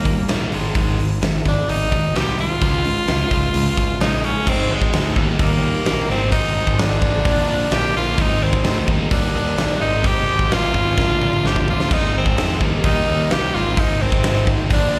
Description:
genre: classic rock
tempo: 129 BPM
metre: 4/4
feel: straight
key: unclear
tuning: A4 = 441 Hz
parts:
  - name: raspy tenor saxophone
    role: melody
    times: 0.0-15.0 s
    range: Ab3 to G4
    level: -24 LUFS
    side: equal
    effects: slapback echo
  - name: sludgy distorted guitar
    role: riff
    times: 0.0-15.0 s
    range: Ab2 to Eb4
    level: -28 LUFS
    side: equal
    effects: overdrive, slapback echo
  - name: tight distorted guitar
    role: riff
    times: 0.0-15.0 s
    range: Ab2 to F4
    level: -30 LUFS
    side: equal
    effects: none
  - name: fuzz picked electric bass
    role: bass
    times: 0.0-15.0 s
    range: Ab1 to F2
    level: -25 LUFS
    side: equal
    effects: overdrive
  - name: big rock drum kit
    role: drums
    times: 0.1-14.8 s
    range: crash cymbal, hi-hat, kick drum, snare drum, toms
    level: -24 LUFS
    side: equal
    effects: none
  - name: bright tonewheel organ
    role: sustained chords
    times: 4.5-15.0 s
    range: none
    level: barely audible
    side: none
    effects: none
room: little or no reverb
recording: live gig heard through the venue's PA, recital hall reverb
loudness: -18 LUFS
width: mono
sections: 0.0-4.5 A section; 4.5-15.0 B section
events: drum fill 11.0-11.9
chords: 0.0 Eb; 0.5 Ab; 2.6 Db; 4.5 Ab; 5.2 Eb; 6.1 Ab; 7.2 Bb; 8.2 Ab; 8.9 Eb; 9.8 Ab; 11.0 Bb; 11.9 Ab; 12.6 Eb; 13.5 Ab

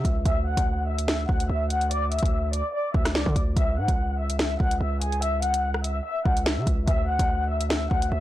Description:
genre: hip hop, drill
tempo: 145 BPM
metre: 4/4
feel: half-time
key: unclear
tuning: A4 = 440 Hz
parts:
  - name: warm symphonic violin section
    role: melody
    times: 0.0-8.2 s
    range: G#4 to F#6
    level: -28 LUFS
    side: left 2 dB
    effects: low-pass filter
  - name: distorted 808-style bass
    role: bass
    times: 0.0-8.2 s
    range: C#2 to D3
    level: -26 LUFS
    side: equal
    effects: distortion
  - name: drill drum kit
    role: drums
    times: 0.0-8.1 s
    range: hi-hat, kick drum, rim click, snare drum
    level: -25 LUFS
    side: equal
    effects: none
room: little or no reverb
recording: blown-out, overdriven recording, overdrive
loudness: -22 LUFS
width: side -14 dB against mid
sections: 0.0-8.2 A section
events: none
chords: 0.3 D; 3.6 C#m; 6.9 D

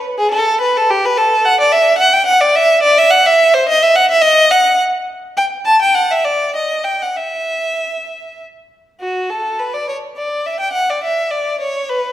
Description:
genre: classical, baroque-style suite movement for unaccompanied violin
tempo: 95-109 BPM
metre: 3/4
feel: rubato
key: E minor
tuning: A4 = 440 Hz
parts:
  - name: rich violin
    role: solo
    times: 0.2-12.1 s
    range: F#4 to A5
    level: -12 LUFS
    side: equal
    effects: none
room: wet recital hall reverb, RT60 1.6 s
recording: none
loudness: -11 LUFS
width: side -12 dB against mid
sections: 0.0-9.0 A section; 9.0-12.1 A section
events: none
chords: none

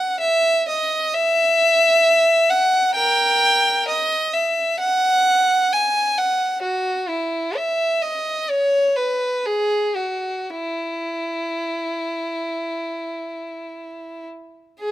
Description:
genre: classical, baroque-style suite movement for unaccompanied violin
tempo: 54-66 BPM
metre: 4/4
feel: rubato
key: E major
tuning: A4 = 442 Hz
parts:
  - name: rich violin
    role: solo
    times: 0.0-14.9 s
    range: E4 to G#5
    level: -18 LUFS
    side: equal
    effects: none
room: light reverb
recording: close, detailed microphones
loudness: -17 LUFS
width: side -14 dB against mid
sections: 0.0-14.8 A section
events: none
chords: none

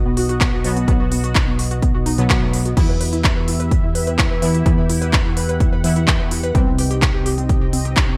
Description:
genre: melodic techno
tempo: 127 BPM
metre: 4/4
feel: straight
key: E harmonic minor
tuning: A4 = 437 Hz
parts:
  - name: sweeping resonant pad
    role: sustained chords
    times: 0.0-8.2 s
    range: B3 to F#5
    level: -31 LUFS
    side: equal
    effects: chorus, vintage 12-bit sampler grit, sidechain pumping
  - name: woody wave-folded pluck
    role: arpeggios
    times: 0.0-8.2 s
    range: A3 to B4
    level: -28 LUFS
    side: equal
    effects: lush chorus, sidechain pumping, digital delay
  - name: synth brass stab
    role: stabs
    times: 0.0-8.2 s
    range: B2 to E4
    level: -26 LUFS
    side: equal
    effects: chorus, sidechain pumping, digital delay
  - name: tight sequencer bass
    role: bass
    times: 0.0-8.2 s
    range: B1 to E2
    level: -24 LUFS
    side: equal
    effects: sidechain pumping
  - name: techno drum kit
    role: drums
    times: 0.2-8.1 s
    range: crash cymbal, handclaps, hi-hat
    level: -25 LUFS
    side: equal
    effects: gated reverb
  - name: electronic kick drum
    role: drums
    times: 0.4-8.1 s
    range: none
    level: -20 LUFS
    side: equal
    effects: none
room: light reverb, digital ambience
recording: bright 1980s-style digital production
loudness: -18 LUFS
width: mono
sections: 0.0-8.2 A section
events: none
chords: 0.0 B; 2.8 Em; 6.5 Cm

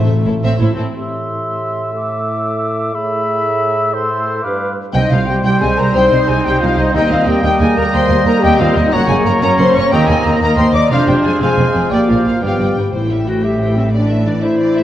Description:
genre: cinematic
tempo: 120 BPM (dotted quarters)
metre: 6/8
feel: straight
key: A minor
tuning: A4 = 440 Hz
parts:
  - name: warm symphonic violin section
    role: melody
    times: 0.0-0.8, 4.9-14.8 s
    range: F4 to Bb5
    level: -26 LUFS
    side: left 4 dB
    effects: none
  - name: rich symphonic violin section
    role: second line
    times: 0.0-0.9, 5.0-14.8 s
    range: E4 to D6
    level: -26 LUFS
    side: left 4 dB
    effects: none
  - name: warm symphonic viola section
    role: accompaniment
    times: 0.0-0.9, 5.4-14.8 s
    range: E3 to E4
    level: -21 LUFS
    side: right 1 dB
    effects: none
  - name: clear French horn section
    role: sustained chords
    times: 0.0-0.8, 4.9-14.8 s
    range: C3 to D5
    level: -19 LUFS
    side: left 4 dB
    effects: none
  - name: timpani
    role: percussion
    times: 0.0-0.4, 12.9-13.4 s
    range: A2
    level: -21 LUFS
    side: left 1 dB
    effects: none
  - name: rich studio double bass section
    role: bass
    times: 0.3-0.8, 4.9-14.8 s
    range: F1 to Eb2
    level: -19 LUFS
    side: right 2 dB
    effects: none
  - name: warm symphonic cello section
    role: bass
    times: 0.3-0.8, 4.9-14.8 s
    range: C2 to Bb2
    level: -19 LUFS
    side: right 1 dB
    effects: none
  - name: concert flute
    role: second line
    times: 0.9-14.8 s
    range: C5 to D6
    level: -23 LUFS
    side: left 1 dB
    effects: none
  - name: warm clarinet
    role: second line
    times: 0.9-14.8 s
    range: C4 to Eb5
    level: -22 LUFS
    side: left 1 dB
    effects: none
  - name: warm trumpet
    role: stabs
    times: 0.9-12.8 s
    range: B4 to E5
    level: -21 LUFS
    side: right 1 dB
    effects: none
  - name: warm oboe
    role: second line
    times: 1.0-12.8 s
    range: E5 to Bb5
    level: -24 LUFS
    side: equal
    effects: none
  - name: bright trombone section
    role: sustained chords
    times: 1.0-12.8 s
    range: G2 to C4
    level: -22 LUFS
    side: right 2 dB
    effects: none
room: wet scoring stage reverb, RT60 1.8 s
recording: worn, warbling old tape, cassette tape, warbly pitch drift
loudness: -12 LUFS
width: side -12 dB against mid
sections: 0.9-4.9 A section; 4.9-12.9 B section; 12.9-14.8 C section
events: none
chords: 0.0 Am; 0.9 C/A; 3.9 Am; 4.4 G7; 4.9 Cm; 6.9 Eb; 8.9 Gb; 9.9 Eb; 10.9 Fm; 11.9 Bb; 12.4 G7; 12.9 C/A; 13.9 Dsus2/A

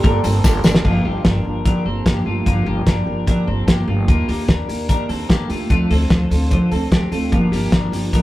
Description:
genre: jangly indie pop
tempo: 148 BPM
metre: 4/4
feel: straight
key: G minor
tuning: A4 = 442 Hz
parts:
  - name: fingerpicked steel-string acoustic guitar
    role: accompaniment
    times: 0.0-8.2 s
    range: G2 to A4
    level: -22 LUFS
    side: right 1 dB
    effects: none
  - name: twelve-string electric guitar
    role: arpeggios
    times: 0.0-8.2 s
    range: A3 to C5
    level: -25 LUFS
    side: left 2 dB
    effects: analog delay
  - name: upright bass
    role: bass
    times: 0.0-8.2 s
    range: G1 to Eb2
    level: -21 LUFS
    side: equal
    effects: none
  - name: cloth-damped thuddy drum kit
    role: drums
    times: 0.0-8.2 s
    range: crash cymbal, hi-hat, kick drum, snare drum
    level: -17 LUFS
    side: equal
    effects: none
  - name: tambourine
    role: percussion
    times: 0.2-0.7 s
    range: none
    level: -32 LUFS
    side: left 6 dB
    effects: none
room: moderate small room reverb, RT60 0.5 s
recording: rough rehearsal-room recording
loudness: -15 LUFS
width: side -16 dB against mid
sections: 0.8-8.2 A section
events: drum fill 0.4-0.8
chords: 0.0 Gmadd9; 4.1 Ebmaj7; 5.7 Dm7; 7.3 Gm7

